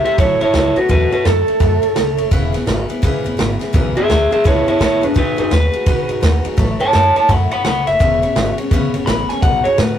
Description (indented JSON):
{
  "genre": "rockabilly",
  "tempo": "169 BPM",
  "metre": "4/4",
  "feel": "swing 63% on 8ths",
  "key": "E major",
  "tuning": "A4 = 439 Hz",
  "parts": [
    { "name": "electric guitar through a small old amp", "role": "melody", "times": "0.0-10.0 s", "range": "D4 to B5", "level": "-15 LUFS", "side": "equal", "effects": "none" },
    { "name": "picked steel-string acoustic guitar", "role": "accompaniment", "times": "0.0-10.0 s", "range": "C#3 to C#5", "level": "-23 LUFS", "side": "left 1 dB", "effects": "none" },
    { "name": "upright bass", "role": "bass", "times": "0.0-10.0 s", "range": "E1 to A2", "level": "-19 LUFS", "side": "equal", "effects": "none" },
    { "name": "vintage drum kit", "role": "drums", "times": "0.1-9.9 s", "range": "kick drum, ride cymbal, snare drum", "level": "-19 LUFS", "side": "equal", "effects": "none" }
  ],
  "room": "moderate booth ambience, RT60 0.2 s",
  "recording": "rough rehearsal-room recording, tube saturation",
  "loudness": "-13 LUFS",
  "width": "side -10 dB against mid",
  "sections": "0.0-10.0 A section",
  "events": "clean electric guitar solo 0.0-10.0",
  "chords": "0.0 A6; 2.3 E6; 5.2 B6; 6.6 A6; 8.0 E6; 9.4 B6"
}